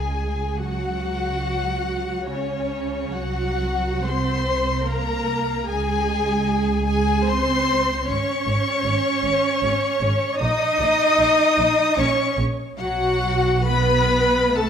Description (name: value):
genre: classical, slow romantic movement for string orchestra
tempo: 64-78 BPM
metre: 3/4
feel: rubato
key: unclear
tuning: A4 = 440 Hz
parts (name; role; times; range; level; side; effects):
- rich chamber violin section; melody; 0.0-14.7 s; Db5 to D#6; -25 LUFS; left 6 dB; none
- dark chamber violin section; second line; 0.0-14.7 s; Db4 to D#5; -26 LUFS; left 2 dB; none
- warm chamber viola section; accompaniment; 0.0-14.7 s; Db4 to D#5; -25 LUFS; right 2 dB; none
- rich chamber cello section; bass; 0.0-14.7 s; Db3 to D#4; -26 LUFS; right 3 dB; none
- rich chamber double bass section; bass; 0.0-14.7 s; G#1 to Db2; -26 LUFS; right 2 dB; none
room: moderate recital hall reverb, RT60 1.4 s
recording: none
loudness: -19 LUFS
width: side -8 dB against mid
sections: 0.0-14.7 A section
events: none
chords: 0.0 Db5; 0.6 Gb5/Db; 3.2 Bbsus2/C; 5.7 Db5; 8.1 C#5/G#; 10.4 A#madd11; 12.8 B5